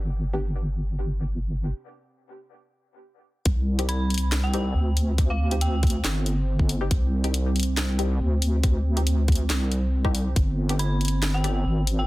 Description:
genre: deep dubstep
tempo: 139 BPM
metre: 4/4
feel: swing 54% on 16ths, half-time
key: C harmonic minor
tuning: A4 = 439 Hz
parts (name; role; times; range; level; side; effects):
- dark analog pad; sustained chords; 0.0-12.1 s; C4; -34 LUFS; right 3 dB; chorus
- deep soft wobble bass; bass; 0.0-12.1 s; G1 to D2; -23 LUFS; equal; chorus
- filtered dub chord stab; stabs; 0.3-0.4, 3.8-11.5 s; B3 to G4; -35 LUFS; left 2 dB; wide subtle chorus, dub echo
- electronic kick drum; drums; 3.5-10.5 s; none; -22 LUFS; equal; studio ambience
- garage drum kit; drums; 3.5-12.0 s; handclaps, hi-hat, snare drum; -29 LUFS; left 1 dB; studio ambience
- dark detuned synth bell; melody; 3.9-5.9, 10.8-12.1 s; F5 to B5; -34 LUFS; equal; chorus, dub echo
room: digital ambience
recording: dense, heavily limited modern master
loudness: -22 LUFS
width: side -19 dB against mid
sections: 0.0-3.5 A section; 3.5-12.1 B section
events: break 1.7-3.5; drop 3.5-12.1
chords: 0.0 N.C.; 3.5 C5; 10.4 G

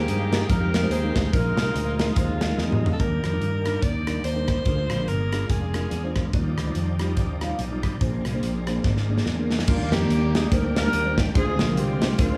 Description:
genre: uptempo gospel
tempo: 144 BPM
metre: 4/4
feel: swing 59% on 8ths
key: Eb major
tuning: A4 = 440 Hz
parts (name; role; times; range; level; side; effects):
- clear saxophone section; melody; 0.0-3.0, 9.7-12.4 s; Ab3 to C5; -30 LUFS; equal; slapback echo
- mellow tine electric piano; accompaniment; 0.0-12.4 s; Bb2 to F5; -30 LUFS; equal; none
- bright tonewheel organ; sustained chords; 0.0-12.4 s; C3 to G5; -38 LUFS; equal; slow rotary speaker, overdrive, chorus vibrato
- fingered electric bass; bass; 0.0-12.4 s; F1 to G2; -28 LUFS; equal; none
- modern studio drum kit; drums; 0.1-12.3 s; crash cymbal, hi-hat, kick drum, rim click, snare drum, toms; -28 LUFS; equal; none
- bright alto saxophone; melody; 2.9-6.1 s; Ab4 to D5; -32 LUFS; equal; none
room: little or no reverb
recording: studio reverb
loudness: -24 LUFS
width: mono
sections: 0.0-3.0 A section; 3.0-9.7 B section; 9.7-12.4 A section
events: drum fill 2.6-3.0, 8.8-9.7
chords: 0.0 Fm11; 1.3 Bb7sus4; 3.0 Ebmaj7; 4.7 Bb7; 6.3 Ebmaj9; 8.0 Bb9; 9.7 Ebmaj7; 11.4 Dm7b5

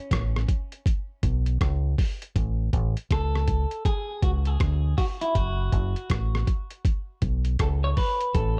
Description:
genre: roots reggae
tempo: 80 BPM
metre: 4/4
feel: swing 63% on 16ths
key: unclear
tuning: A4 = 440 Hz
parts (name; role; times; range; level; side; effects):
- clean electric guitar; accompaniment; 0.0-8.6 s; C#4 to C#5; -33 LUFS; equal; spring reverb, tape echo
- deep dub fingered electric bass; bass; 0.1-8.6 s; F#1 to D2; -27 LUFS; equal; none
- lo-fi sampler-style drum kit; drums; 0.1-8.6 s; hi-hat, kick drum, rim click; -28 LUFS; equal; overdrive
room: little or no reverb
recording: dark, warm production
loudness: -26 LUFS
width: mono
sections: 0.0-8.6 A section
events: clean electric guitar solo 0.0-8.6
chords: 0.0 F#m (rootless); 0.9 Bsus2; 2.4 A; 3.9 C#5; 5.4 F#m; 6.9 Bsus2

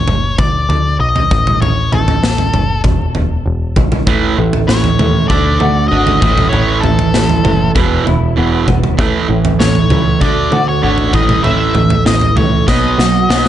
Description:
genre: quiet-loud alternative rock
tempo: 98 BPM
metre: 4/4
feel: straight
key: unclear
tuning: A4 = 440 Hz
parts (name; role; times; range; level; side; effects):
- octave-fuzz lead guitar; melody; 0.0-13.5 s; A4 to E5; -17 LUFS; left 3 dB; distortion, tape echo
- overdriven picked electric bass; bass; 0.0-13.5 s; E1 to D#2; -16 LUFS; left 1 dB; none
- big rock drum kit; drums; 0.1-13.5 s; kick drum, snare drum, toms; -15 LUFS; equal; none
- electric guitar through a small old amp; arpeggios; 4.1-13.5 s; E2 to F#4; -21 LUFS; left 4 dB; ensemble chorus
- fuzz guitar; riff; 4.1-13.5 s; E2 to D4; -15 LUFS; right 6 dB; distortion
room: small room ambience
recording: nothing above 10.5 kHz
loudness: -10 LUFS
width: side -11 dB against mid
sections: 0.0-13.5 A section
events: drum fill 12.7-13.5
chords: 0.4 Bm; 1.3 F#m; 2.8 E5; 4.1 A; 5.3 D; 6.2 A5; 7.8 E5; 9.0 A; 10.2 D; 11.1 A; 12.7 B

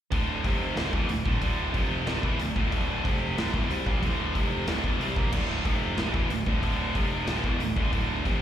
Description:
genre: heavy metal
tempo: 184 BPM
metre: 4/4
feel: straight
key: D minor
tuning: A4 = 440 Hz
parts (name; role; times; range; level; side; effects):
- scooped high-gain guitar; riff; 0.1-8.4 s; D2 to C4; -31 LUFS; left 12 dB; distortion
- tight distorted guitar; riff; 0.1-8.4 s; D2 to C4; -31 LUFS; right 10 dB; distortion, slapback echo
- fuzz picked electric bass; bass; 0.1-8.4 s; D1 to C2; -32 LUFS; equal; overdrive
- big rock drum kit; drums; 0.1-8.3 s; crash cymbal, hi-hat, kick drum, snare drum; -29 LUFS; equal; none
room: little or no reverb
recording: live gig heard through the venue's PA, recital hall reverb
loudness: -25 LUFS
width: side -10 dB against mid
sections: 0.1-8.4 A section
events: none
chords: 0.1 D5; 0.4 F5; 0.8 D5; 1.7 F5; 2.1 D5; 3.0 F5; 3.4 Dm; 4.4 F5; 4.7 Dm; 5.7 F5; 6.0 D5; 7.0 F5; 7.3 D5

